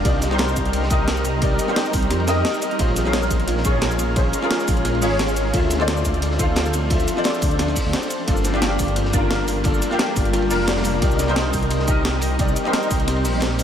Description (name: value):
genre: liquid drum and bass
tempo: 175 BPM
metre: 4/4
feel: straight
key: G minor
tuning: A4 = 440 Hz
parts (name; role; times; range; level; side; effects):
- felt-muted upright piano; accompaniment; 0.0-13.6 s; Bb3 to F5; -24 LUFS; left 1 dB; ensemble chorus, tape echo
- shimmering ambient pad; sustained chords; 0.0-13.6 s; F3 to Bb4; -27 LUFS; equal; chorus, built-in reverb
- dark detuned saw bass; bass; 0.0-13.6 s; F1 to F2; -23 LUFS; equal; tube saturation
- harp-like synth pluck; arpeggios; 0.1-13.6 s; F4 to G5; -29 LUFS; left 2 dB; chorus, cassette tape, tape echo
- breakbeat sampler-style drum kit; drums; 0.1-13.6 s; hi-hat, shaker, snare drum; -26 LUFS; equal; none
- crunchy breakbeat drum kit; drums; 0.1-13.6 s; hi-hat, ride cymbal, snare drum; -31 LUFS; equal; high-pass filter on cymbals, high-pass filter on hats, high-pass filter on snare, high-pass filter on room
- electronic kick drum; drums; 0.1-13.0 s; none; -23 LUFS; equal; none
room: moderate cathedral reverb, RT60 4.6 s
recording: dreamy mix soaked in reverb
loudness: -18 LUFS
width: side -9 dB against mid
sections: 0.0-8.3 A section; 8.3-13.6 A section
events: drop 0.0-8.3, 8.3-13.6; break 7.9-8.3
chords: 0.0 Cm7; 2.8 Bbm7; 5.5 Dm7; 8.3 Gm7; 11.0 Cm7